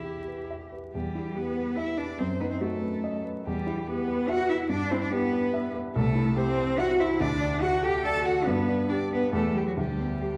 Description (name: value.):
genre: quick classical-period movement for piano trio.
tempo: 143 BPM.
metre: 3/4.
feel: rubato.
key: E minor, G major from 6.0 s.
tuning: A4 = 439 Hz.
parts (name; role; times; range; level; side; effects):
rich violin; melody; 0.0-10.4 s; E4 to A5; -38 LUFS; equal; none.
rich cello; second line; 0.0-10.4 s; F#3 to A4; -30 LUFS; equal; none.
warm baby grand piano; accompaniment; 0.0-10.4 s; C2 to E5; -32 LUFS; equal; none.
room: wet recital hall reverb, RT60 1.4 s.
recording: dark, warm production, vinyl crackle.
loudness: -28 LUFS.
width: mono.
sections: 0.9-10.4 A section.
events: none.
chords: 0.0 Em; 2.2 B7/F#; 3.5 Em; 4.7 Em/G; 6.0 Am7/C; 7.2 D; 8.5 G; 9.3 Em; 9.8 G/D.